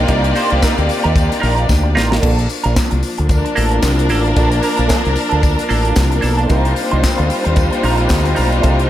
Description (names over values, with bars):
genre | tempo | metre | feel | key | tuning
disco | 112 BPM | 4/4 | swing 56% on 16ths | Bb major | A4 = 443 Hz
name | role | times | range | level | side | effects
warm studio violin section | second line | 0.0-8.9 s | G3 to D5 | -19 LUFS | left 1 dB | none
clear studio string section | sustained chords | 0.0-8.9 s | C3 to F4 | -22 LUFS | left 1 dB | none
growling fingered electric bass | bass | 0.0-8.9 s | A1 to Eb2 | -16 LUFS | equal | overdrive
clean electric guitar | accompaniment | 0.1-8.9 s | Bb3 to C5 | -21 LUFS | right 5 dB | wah
tight funk drum kit | drums | 0.1-8.9 s | crash cymbal, handclaps, hi-hat, kick drum, snare drum | -18 LUFS | equal | gated reverb
tambourine | percussion | 0.1-8.8 s | none | -33 LUFS | left 7 dB | none
room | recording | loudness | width
light reverb, small room ambience | none | -12 LUFS | side -12 dB against mid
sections
0.0-2.2 A section; 2.2-8.9 B section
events
drum fill 1.7-2.2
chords
0.0 Cm11; 2.2 Bbmaj7; 6.5 Cm11